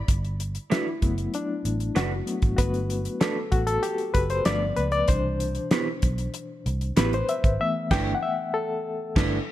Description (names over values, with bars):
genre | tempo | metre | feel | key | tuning
lush 1970s-style soul | 96 BPM | 4/4 | straight | G major | A4 = 440 Hz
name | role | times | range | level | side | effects
barky reed electric piano | accompaniment | 0.0-9.5 s | B2 to G5 | -27 LUFS | left 3 dB | overdrive, medium tremolo
vintage muted fingered electric bass | bass | 0.1-9.4 s | F#1 to C#2 | -28 LUFS | equal | none
damped 70s drum kit | drums | 0.1-9.4 s | crash cymbal, hi-hat, kick drum, snare drum | -25 LUFS | equal | none
electric guitar through a small old amp | riff | 0.7-9.4 s | A3 to B4 | -30 LUFS | right 5 dB | none
room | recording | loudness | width
light reverb, studio reverb | none | -23 LUFS | side -14 dB against mid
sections
0.1-9.5 A section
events
reed electric piano solo 0.1-9.5; band accent 7.6-9.5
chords
0.1 Gmaj9; 4.5 G9; 5.1 Cmaj7; 7.6 G69